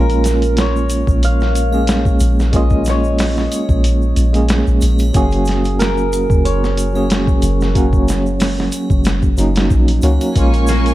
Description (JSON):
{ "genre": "trip hop", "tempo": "92 BPM", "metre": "4/4", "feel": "swing 54% on 16ths", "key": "Bb minor", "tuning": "A4 = 439 Hz", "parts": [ { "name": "hammered dulcimer", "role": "melody", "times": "0.0-9.7 s", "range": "Gb4 to F5", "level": "-22 LUFS", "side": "right 1 dB", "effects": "tape echo" }, { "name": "barky tine electric piano", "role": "accompaniment", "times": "0.0-10.9 s", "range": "Gb3 to Ab4", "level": "-18 LUFS", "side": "right 1 dB", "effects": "tremolo, tape echo" }, { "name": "soft 808-style bass", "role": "bass", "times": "0.0-10.9 s", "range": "Gb1 to Db2", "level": "-16 LUFS", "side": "equal", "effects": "none" }, { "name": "boom bap sampler-style drum kit", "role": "drums", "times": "0.1-10.9 s", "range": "hi-hat, kick drum, snare drum", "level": "-17 LUFS", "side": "equal", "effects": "none" }, { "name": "egg shaker and triangle", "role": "percussion", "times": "0.1-10.9 s", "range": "none", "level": "-34 LUFS", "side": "equal", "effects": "none" }, { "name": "clear studio string section", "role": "sustained chords", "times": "10.4-10.9 s", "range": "Bb4 to Db6", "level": "-22 LUFS", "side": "left 1 dB", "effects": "vintage 12-bit sampler grit" }, { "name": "concert harp", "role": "arpeggios", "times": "10.7-10.9 s", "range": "Bb3", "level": "-22 LUFS", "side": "left 3 dB", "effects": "tape echo" } ], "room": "small room ambience", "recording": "dark, warm production", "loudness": "-12 LUFS", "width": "side -15 dB against mid", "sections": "0.0-10.9 A section", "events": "none", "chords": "0.0 Bbm7; 5.1 Gb; 10.4 Bbm7" }